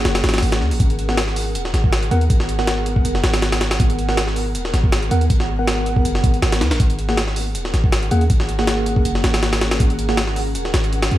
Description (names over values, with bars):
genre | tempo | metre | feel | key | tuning
drum and bass, jungle | 160 BPM | 4/4 | swing 53% on 16ths | G# minor | A4 = 442 Hz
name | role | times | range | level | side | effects
mellow tine electric piano | stabs | 0.0-10.2 s | A#3 to F#5 | -24 LUFS | right 1 dB | medium stereo tremolo, vintage 12-bit sampler grit, dub echo
warm 808-style bass | bass | 0.0-11.2 s | D#1 to D#2 | -20 LUFS | equal | none
jungle sampler-style drum kit | drums | 0.1-11.2 s | hi-hat, kick drum, snare drum | -19 LUFS | equal | none
room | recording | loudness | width
digital ambience | vinyl crackle | -16 LUFS | side -14 dB against mid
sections
0.0-11.2 A section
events
none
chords
0.0 F#add9; 0.8 G#m9; 6.8 F#add9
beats
0.05 0.43 | 0.80 1.18 1.55 1.93 | 2.30 2.68 3.05 3.43 | 3.80 4.18 4.55 4.93 | 5.30 5.68 6.05 6.43 | 6.80 7.18 7.55 7.93 | 8.30 8.68 9.05 9.43 | 9.80 10.18 10.55 10.93